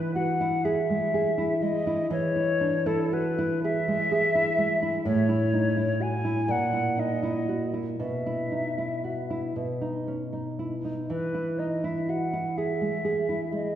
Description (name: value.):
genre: romantic duo for flute and classical guitar.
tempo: 40 BPM (dotted quarters).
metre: 6/8.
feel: uneven beats, rubato.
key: E major.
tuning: A4 = 440 Hz.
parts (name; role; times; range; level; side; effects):
hollow concert flute; melody; 0.0-13.8 s; A4 to G#5; -28 LUFS; left 2 dB; slapback echo.
nylon-string guitar; accompaniment; 0.0-13.8 s; A2 to G#4; -27 LUFS; right 1 dB; none.
room: wet concert hall reverb, RT60 2.3 s.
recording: heard from further back in the room.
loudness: -24 LUFS.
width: side -10 dB against mid.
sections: 0.0-13.8 A section.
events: none.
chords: 0.0 E; 5.0 A; 6.5 F#7/A#; 8.0 E5/B; 9.6 B; 11.1 E.